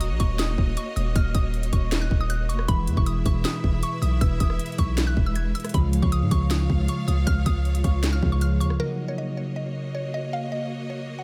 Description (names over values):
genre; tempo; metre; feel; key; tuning
hip hop, trap; 157 BPM; 4/4; half-time; Eb minor; A4 = 440 Hz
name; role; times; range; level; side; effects
mallet-like synth pluck; melody; 0.0-11.2 s; Bb4 to G#6; -36 LUFS; equal; chorus, phaser, diffuse ambient delay
clear symphonic string section; sustained chords; 0.0-11.2 s; G#3 to F5; -36 LUFS; equal; none
hard-hitting 808-style bass; bass; 0.0-8.8 s; Eb1 to Ab2; -26 LUFS; equal; none
trap drum kit; drums; 0.0-8.8 s; handclaps, hi-hat, kick drum, rim click, snare drum; -27 LUFS; equal; none
concert harp; accompaniment; 2.7-11.2 s; B2 to G#4; -32 LUFS; equal; none
room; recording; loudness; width
light reverb; none; -24 LUFS; mono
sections
0.0-8.8 A section; 8.8-11.2 B section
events
none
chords
0.0 Ebm7; 2.7 E; 5.7 Db; 8.8 Ebm7